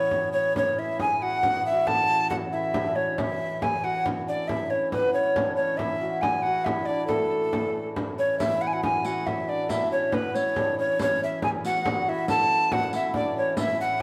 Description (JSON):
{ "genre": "medieval dance", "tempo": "92 BPM (dotted quarters)", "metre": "6/8", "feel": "straight", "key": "A major", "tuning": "A4 = 440 Hz", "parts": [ { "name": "breathy tenor recorder", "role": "melody", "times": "0.0-14.0 s", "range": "A4 to A5", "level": "-27 LUFS", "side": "equal", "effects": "none" }, { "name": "hammered dulcimer", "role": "second line", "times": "0.0-14.0 s", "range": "A3 to A4", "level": "-33 LUFS", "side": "equal", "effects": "none" }, { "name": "pedal harmonium", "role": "drone", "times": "0.0-14.0 s", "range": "A2 to E3", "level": "-41 LUFS", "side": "equal", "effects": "none" }, { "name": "frame drum", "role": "percussion", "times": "0.1-14.0 s", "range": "none", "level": "-35 LUFS", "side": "equal", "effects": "none" }, { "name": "riq", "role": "percussion", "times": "8.4-13.8 s", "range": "none", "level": "-40 LUFS", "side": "equal", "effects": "none" } ], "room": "wet stone room reverb, RT60 1.1 s", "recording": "band playing live in one room", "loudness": "-25 LUFS", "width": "mono", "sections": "0.0-8.4 A section; 8.4-14.0 A section", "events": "none", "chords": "none", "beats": "| 0.56 1.21 | 1.87 2.53 | 3.18 3.84 | 4.49 5.14 | 5.80 6.45 | 7.10 7.75 | 8.40 9.05 | 9.70 10.35 | 10.99 11.64 | 12.28 12.93 | 13.57" }